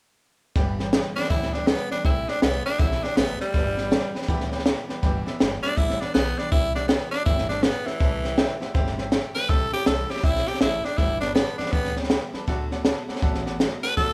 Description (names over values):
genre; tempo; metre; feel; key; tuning
rockabilly; 161 BPM; 4/4; swing 63% on 8ths; G major; A4 = 440 Hz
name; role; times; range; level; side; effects
clear upright piano; accompaniment; 0.6-14.1 s; A4 to A5; -39 LUFS; equal; none
picked steel-string acoustic guitar; accompaniment; 0.6-14.1 s; G2 to G4; -38 LUFS; equal; none
upright bass; bass; 0.6-14.1 s; G1 to D2; -34 LUFS; equal; none
compact cocktail drum kit; drums; 0.6-14.1 s; hi-hat, kick drum, snare drum; -26 LUFS; equal; none
raspy tenor saxophone; melody; 1.2-14.1 s; E3 to B4; -29 LUFS; equal; none
room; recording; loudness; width
light reverb; band playing live in one room; -24 LUFS; mono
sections
0.6-14.1 A section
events
none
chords
0.6 G6; 2.0 C6; 3.5 G6; 6.5 C6; 11.0 G6; 12.5 D6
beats
| 0.56 0.93 1.30 1.68 | 2.05 2.42 2.79 3.17 | 3.54 3.91 4.29 4.66 | 5.03 5.40 5.78 6.15 | 6.52 6.89 7.26 7.64 | 8.01 8.38 8.75 9.12 | 9.50 9.87 10.24 10.61 | 10.99 11.36 11.73 12.10 | 12.48 12.85 13.22 13.60 | 13.97